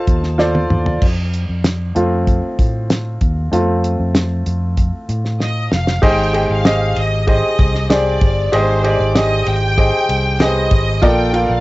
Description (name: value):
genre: piano-driven pop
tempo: 96 BPM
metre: 4/4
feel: straight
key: unclear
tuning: A4 = 442 Hz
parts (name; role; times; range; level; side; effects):
- clear studio violin section; melody; 0.0-0.4, 5.4-11.6 s; C5 to A5; -21 LUFS; left 1 dB; cassette tape
- clear baby grand piano; accompaniment; 0.0-11.6 s; Ab2 to F5; -18 LUFS; equal; cassette tape
- fingered electric bass; bass; 0.1-11.6 s; F1 to A2; -18 LUFS; equal; none
- damped 70s drum kit; drums; 0.1-11.5 s; crash cymbal, hi-hat, kick drum, ride cymbal, snare drum, toms; -16 LUFS; equal; cassette tape
room: moderate booth ambience, RT60 0.2 s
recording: home recording on cassette, nothing above 7.8 kHz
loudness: -13 LUFS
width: side -19 dB against mid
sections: 0.0-1.0 A section; 1.0-6.0 B section; 6.0-11.6 C section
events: drum fill 0.4-1.0, 5.4-6.0; grand piano solo 1.0-6.0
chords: 0.0 F; 6.0 Abmaj7; 11.0 Bbmaj7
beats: 0.39 | 1.02 1.65 2.27 2.90 | 3.52 4.15 4.78 5.40 | 6.03 6.65 7.28 7.90 | 8.53 9.15 9.78 10.40 | 11.03